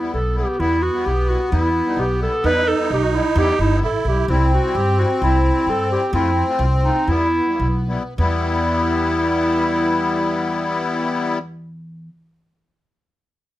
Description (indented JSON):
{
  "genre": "klezmer",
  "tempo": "98-131 BPM",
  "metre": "2/4",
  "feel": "straight",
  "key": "E harmonic minor",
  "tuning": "A4 = 440 Hz",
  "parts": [
    { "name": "mellow clarinet", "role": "melody", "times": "0.0-11.4 s", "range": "D#4 to B4", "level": "-21 LUFS", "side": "equal", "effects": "plate reverb" },
    { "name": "musette accordion", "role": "second line", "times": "0.0-11.4 s", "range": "A#3 to E4", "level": "-24 LUFS", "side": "equal", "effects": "none" },
    { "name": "musette accordion", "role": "accompaniment", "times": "0.0-11.4 s", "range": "G3 to F4", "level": "-24 LUFS", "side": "left 3 dB", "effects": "none" },
    { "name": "upright bass", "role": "bass", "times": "0.1-12.1 s", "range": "G1 to G2", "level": "-22 LUFS", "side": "equal", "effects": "none" }
  ],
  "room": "light reverb",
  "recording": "close, detailed microphones",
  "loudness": "-16 LUFS",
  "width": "side -14 dB against mid",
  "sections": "0.6-8.2 A section; 8.2-10.6 B section",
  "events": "slowing down 6.1-8.2",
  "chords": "0.0 Em; 4.3 C; 6.1 F; 7.1 Em"
}